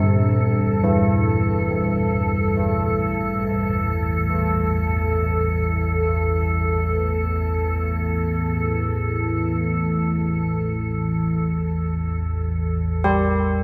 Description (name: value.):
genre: dark ambient drone.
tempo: free time.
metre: none.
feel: none.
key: unclear.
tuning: A4 = 440 Hz.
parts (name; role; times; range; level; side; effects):
carillon bells; arpeggios; 0.0-13.6 s; G2 to G4; -25 LUFS; equal; diffuse ambient delay.
analog drone; drone; 0.6-13.6 s; A1 to E2; -25 LUFS; equal; subtle chorus.
icy glass pad; texture; 0.0-13.6 s; A4; -28 LUFS; equal; chorus, built-in reverb.
room: moderate lush hall reverb, RT60 2.8 s.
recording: dreamy mix soaked in reverb, small room ambience.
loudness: -22 LUFS.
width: mono.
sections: 0.0-13.6 A section.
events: fade-in on synth drone 0.0-13.6.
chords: 0.0 A5.